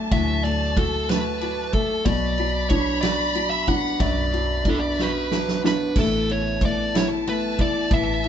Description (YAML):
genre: six-eight pop ballad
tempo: 62 BPM (dotted quarters)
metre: 6/8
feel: straight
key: unclear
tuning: A4 = 440 Hz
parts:
  - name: warm studio violin section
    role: second line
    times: 0.0-8.3 s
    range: F#5 to B5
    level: -30 LUFS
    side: equal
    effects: none
  - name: felt-muted upright piano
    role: accompaniment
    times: 0.0-8.3 s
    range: F#2 to F#4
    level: -26 LUFS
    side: left 3 dB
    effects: none
  - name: electric guitar at the edge of break-up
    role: arpeggios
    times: 0.0-8.3 s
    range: E3 to F#4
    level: -33 LUFS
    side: right 4 dB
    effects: none
  - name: vintage muted fingered electric bass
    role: bass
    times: 0.0-8.3 s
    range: A1 to D2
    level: -29 LUFS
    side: equal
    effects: none
  - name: fuzz lead guitar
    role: melody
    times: 0.1-8.3 s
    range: A4 to F#5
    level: -26 LUFS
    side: right 1 dB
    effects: distortion
  - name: loose indie drum kit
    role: drums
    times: 0.1-8.3 s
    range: crash cymbal, kick drum, ride cymbal, snare drum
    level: -24 LUFS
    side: right 1 dB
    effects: none
room: moderate small room reverb, RT60 0.6 s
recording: band playing live in one room, nothing above 7.9 kHz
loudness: -20 LUFS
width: side -9 dB against mid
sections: 0.0-6.0 A section; 6.0-8.3 A section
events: drum fill 5.0-6.0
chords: 0.0 D; 2.1 Bm; 6.0 Asus2